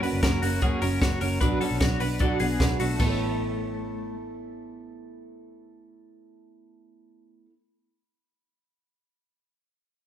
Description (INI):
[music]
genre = jangly indie pop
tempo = 151 BPM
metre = 4/4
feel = straight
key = A major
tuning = A4 = 439 Hz
[part]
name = fingerpicked twelve-string acoustic guitar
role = accompaniment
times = 0.0-7.6 s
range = B2 to C#5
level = -30 LUFS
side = right 3 dB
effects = none
[part]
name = twelve-string electric guitar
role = arpeggios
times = 0.0-4.1 s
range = A3 to C#5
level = -31 LUFS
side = left 5 dB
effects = tremolo
[part]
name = compact cocktail drum kit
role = drums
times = 0.0-3.1 s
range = crash cymbal, hi-hat, kick drum, snare drum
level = -27 LUFS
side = equal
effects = none
[part]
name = vintage muted picked electric bass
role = bass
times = 0.1-7.5 s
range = F#1 to B1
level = -30 LUFS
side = equal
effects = none
[sound]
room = moderate large studio reverb, RT60 1.3 s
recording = band playing live in one room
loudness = -23 LUFS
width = side -10 dB against mid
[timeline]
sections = 0.0-3.0 A section; 3.0-6.2 B section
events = none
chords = 0.0 F#; 1.4 Bm; 3.0 Aadd9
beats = 0.23 0.62 1.02 | 1.41 1.81 2.21 2.60 | 3.00 3.39 3.79 4.19 | 4.58 4.98 5.38 5.77